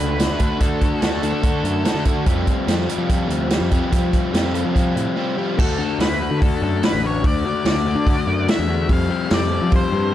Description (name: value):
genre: indie rock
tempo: 145 BPM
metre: 4/4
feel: straight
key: unclear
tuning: A4 = 442 Hz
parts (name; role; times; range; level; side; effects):
- octave-fuzz lead guitar; melody; 0.0-2.0, 5.6-10.1 s; A4 to F5; -26 LUFS; equal; distortion, analog delay
- overdriven electric guitar; riff; 0.0-10.1 s; D3 to A4; -23 LUFS; left 8 dB; none
- overdriven electric guitar; riff; 0.0-5.6 s; D3 to G4; -26 LUFS; right 8 dB; analog chorus, analog delay
- fuzz picked electric bass; bass; 0.0-10.1 s; A1 to F3; -24 LUFS; equal; overdrive
- raw garage drum kit; drums; 0.2-9.8 s; crash cymbal, hi-hat, kick drum, snare drum; -20 LUFS; right 1 dB; none
room: little or no reverb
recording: dark, warm production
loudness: -17 LUFS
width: side -12 dB against mid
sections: 0.0-5.6 A section; 5.6-10.1 B section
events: break 5.2-5.6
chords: 0.0 D; 2.3 Fsus2; 5.6 D; 8.9 Fsus2